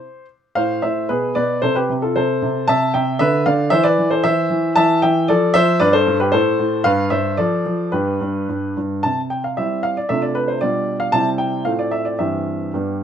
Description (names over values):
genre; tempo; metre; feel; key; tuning
classical-period piano sonatina; 114 BPM; 2/4; rubato; C major from 4.8 s; A4 = 440 Hz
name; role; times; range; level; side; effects
warm baby grand piano; solo; 0.0-13.0 s; G2 to A5; -16 LUFS; equal; none
room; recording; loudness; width
moderate studio reverb, RT60 0.6 s; none; -16 LUFS; side -8 dB against mid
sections
0.6-9.0 A section; 9.0-13.0 B section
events
none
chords
0.0 N.C.; 0.6 Am; 1.1 Bm6; 1.6 Am/C; 2.7 C; 3.2 Dm69; 3.7 C/E; 4.8 N.C.; 5.3 Dm/F; 5.8 G; 6.3 N.C.; 6.8 Em/G; 7.4 Dm/F; 7.9 N.C.; 9.0 C; 10.1 Dm7/C; 10.6 G7/B; 11.1 C; 11.7 F/A; 12.2 C/G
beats
0.02 | 0.57 1.10 | 1.62 2.16 | 2.68 3.20 | 3.72 4.25 | 4.77 5.29 | 5.80 6.32 | 6.85 7.38 | 7.93 8.49 | 9.04 9.58 | 10.10 10.61 | 11.13 11.66 | 12.20 12.74